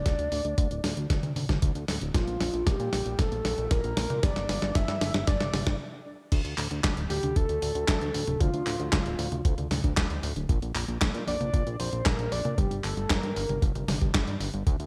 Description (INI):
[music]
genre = italo disco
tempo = 115 BPM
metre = 4/4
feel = straight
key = D minor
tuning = A4 = 441 Hz
[part]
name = soft octave-layered synth lead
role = melody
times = 0.0-13.6 s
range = F4 to E5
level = -35 LUFS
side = equal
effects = chorus, digital delay
[part]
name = soft round pluck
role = arpeggios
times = 0.0-14.9 s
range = D2 to G4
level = -40 LUFS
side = equal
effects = none
[part]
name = fat analog bass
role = bass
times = 0.0-14.9 s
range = D1 to Bb2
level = -35 LUFS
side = equal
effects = none
[part]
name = dusty soul sampler-style drum kit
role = drums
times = 0.1-14.9 s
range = crash cymbal, handclaps, hi-hat, snare drum, toms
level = -33 LUFS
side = equal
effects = gated reverb
[part]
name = electronic kick drum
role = drums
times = 0.1-14.8 s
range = none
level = -28 LUFS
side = equal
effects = none
[sound]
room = digital ambience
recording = none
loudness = -28 LUFS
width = mono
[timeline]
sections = 0.0-6.3 A section; 6.3-14.9 B section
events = drum fill 0.0-5.8; stop 5.8-6.3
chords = 0.0 D5; 2.1 Bb5; 4.2 G5; 6.3 Dm; 10.5 Bb; 12.6 Gm